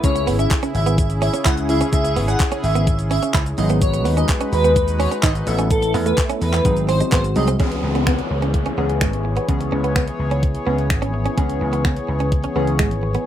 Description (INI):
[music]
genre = dance-pop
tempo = 127 BPM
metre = 4/4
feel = straight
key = C# minor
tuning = A4 = 441 Hz
[part]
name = airy dreamy lead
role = melody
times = 0.0-7.5 s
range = A4 to F#5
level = -23 LUFS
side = equal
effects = chorus, sidechain pumping, plate reverb
[part]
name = warm analog keys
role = accompaniment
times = 0.0-12.9 s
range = E3 to A4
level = -25 LUFS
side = left 2 dB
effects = chorus, sidechain pumping, plate reverb
[part]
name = sweeping resonant pad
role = sustained chords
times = 0.0-13.3 s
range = C#3 to C#5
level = -26 LUFS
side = left 1 dB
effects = chorus, sidechain pumping, plate reverb
[part]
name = vintage slap bass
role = bass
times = 0.0-13.1 s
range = G#1 to E2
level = -21 LUFS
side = equal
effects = sidechain pumping
[part]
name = clean 12-bit digital drum machine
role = drums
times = 0.0-13.3 s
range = finger snaps, handclaps, hi-hat, kick drum, shaker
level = -21 LUFS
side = equal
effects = none
[part]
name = direct-recorded clean electric guitar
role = riff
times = 0.2-13.2 s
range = G#3 to E4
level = -25 LUFS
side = right 5 dB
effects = wide subtle chorus
[part]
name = downlifter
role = sound effects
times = 7.6-11.4 s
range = none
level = -29 LUFS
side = left 4 dB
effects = none
[sound]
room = moderate studio ambience, RT60 0.5 s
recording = rough home demo mix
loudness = -16 LUFS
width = side -11 dB against mid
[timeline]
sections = 0.0-7.6 A section; 7.6-13.3 B section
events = drop 0.0-7.6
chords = 0.0 C#m; 3.6 G#m7; 5.5 Asus2; 6.7 G#7; 7.6 C#m7